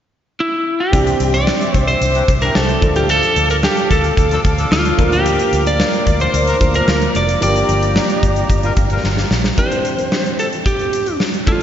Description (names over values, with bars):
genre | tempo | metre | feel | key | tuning
1980s-style pop | 111 BPM | 4/4 | straight | unclear | A4 = 440 Hz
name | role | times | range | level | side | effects
lightly driven lead guitar | melody | 0.4-11.6 s | E4 to D5 | -18 LUFS | equal | slapback echo
dark concert grand piano | accompaniment | 0.9-11.6 s | E3 to Bb4 | -23 LUFS | right 1 dB | slapback echo
brassy analog pad | sustained chords | 0.9-9.6 s | G4 to D6 | -24 LUFS | equal | chorus, tremolo
vintage muted fingered electric bass | bass | 0.9-9.5 s | F1 to D2 | -19 LUFS | equal | none
huge arena drum kit | drums | 0.9-11.6 s | hi-hat, kick drum, snare drum | -18 LUFS | equal | none
mellow horn section | stabs | 2.1-9.3 s | E3 to Bb4 | -27 LUFS | left 2 dB | slapback echo, tape echo
room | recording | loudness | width
wet concert hall reverb, RT60 2.3 s | big arena sound, nothing above 7.6 kHz | -13 LUFS | side -10 dB against mid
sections
0.9-9.6 A section; 9.6-11.6 B section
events
drum fill 9.0-9.6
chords
0.0 N.C.; 0.9 Cadd9; 2.8 Dm; 5.0 Bb/D; 7.4 Gm7; 9.6 Cadd9